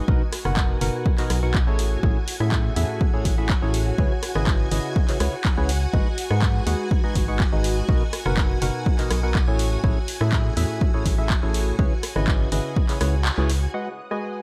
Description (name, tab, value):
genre	piano house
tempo	123 BPM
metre	4/4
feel	straight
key	unclear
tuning	A4 = 438 Hz
part	string machine, violins	sustained chords	0.0-14.4 s	F#4 to D#6	-35 LUFS	equal	ensemble chorus, sidechain pumping
part	percussive organ stab	riff	0.0-14.4 s	A2 to G#5	-30 LUFS	equal	subtle chorus, cassette tape, sidechain pumping, dub echo
part	organ-like FM bass	bass	0.1-13.7 s	F#1 to A2	-26 LUFS	equal	sidechain pumping
part	electronic kick drum	drums	0.1-12.9 s	none	-24 LUFS	equal	overdrive
part	punchy analog drum machine	drums	0.3-14.2 s	handclaps, hi-hat, rim click	-32 LUFS	equal	overdrive, low-pass filter on hats, low-pass filter on snare
room	little or no reverb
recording	none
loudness	-22 LUFS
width	mono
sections	0.0-13.7 A section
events	kick drops out 13.3-13.7; band accent 13.3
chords	0.1 Bmaj7; 1.8 Amaj7; 4.0 C#m7; 5.9 G#m7; 7.9 Bmaj7; 9.6 Amaj7; 11.8 C#m7; 13.7 G#m7